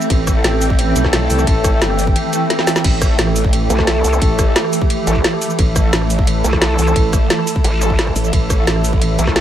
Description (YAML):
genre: dark technical drum and bass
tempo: 175 BPM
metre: 4/4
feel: straight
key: A minor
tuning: A4 = 440 Hz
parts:
  - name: swarming drone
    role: sustained chords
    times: 0.0-9.4 s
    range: E3 to A4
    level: -21 LUFS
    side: right 3 dB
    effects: built-in reverb, sidechain pumping
  - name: drum and bass drum kit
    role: drums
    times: 0.0-9.4 s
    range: crash cymbal, hi-hat, ride cymbal, rim click, shaker, snare drum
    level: -20 LUFS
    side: equal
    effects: none
  - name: deep dark ambient pad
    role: texture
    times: 0.0-9.4 s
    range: A4 to B5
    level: -22 LUFS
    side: equal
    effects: chorus, built-in reverb, sidechain pumping
  - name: growl bass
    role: bass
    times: 0.1-9.2 s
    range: G1 to C2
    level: -18 LUFS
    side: equal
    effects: chorus
  - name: electronic kick drum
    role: drums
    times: 0.1-9.3 s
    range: none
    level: -16 LUFS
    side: equal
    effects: none
  - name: dark brass ensemble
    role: stabs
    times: 0.4-9.4 s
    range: A3 to A4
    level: -25 LUFS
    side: left 2 dB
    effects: tape echo
  - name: vowel-sweep wobble bass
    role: bass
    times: 3.7-9.4 s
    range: A1 to C2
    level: -16 LUFS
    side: equal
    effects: chorus, tube saturation
room: light reverb, digital ambience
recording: none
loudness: -13 LUFS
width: side -11 dB against mid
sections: 0.0-9.4 A section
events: drum fill 2.5-2.8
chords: 0.0 A5